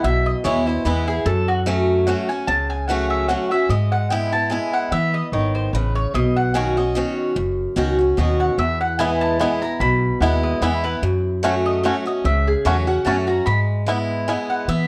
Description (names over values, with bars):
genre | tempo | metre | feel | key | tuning
bluegrass | 147 BPM | 3/4 | swing 54% on 8ths | E major | A4 = 440 Hz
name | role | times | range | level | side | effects
picked swing-style acoustic guitar | accompaniment | 0.0-14.9 s | E2 to F#4 | -24 LUFS | equal | none
mandolin | stabs | 0.0-14.9 s | F#4 to B5 | -26 LUFS | equal | none
upright bass | bass | 0.0-14.9 s | F#1 to E3 | -25 LUFS | equal | none
bluegrass banjo | melody | 9.0-14.4 s | A3 to F#4 | -26 LUFS | equal | none
room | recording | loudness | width
light reverb | worn, warbling old tape, cassette tape, warbly pitch drift | -20 LUFS | mono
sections
0.0-14.9 A section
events
mandolin solo 0.0-14.9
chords
0.0 E; 1.3 F#m; 3.7 E/G#; 6.1 Badd9; 8.6 E; 11.0 F#m; 13.5 E/G#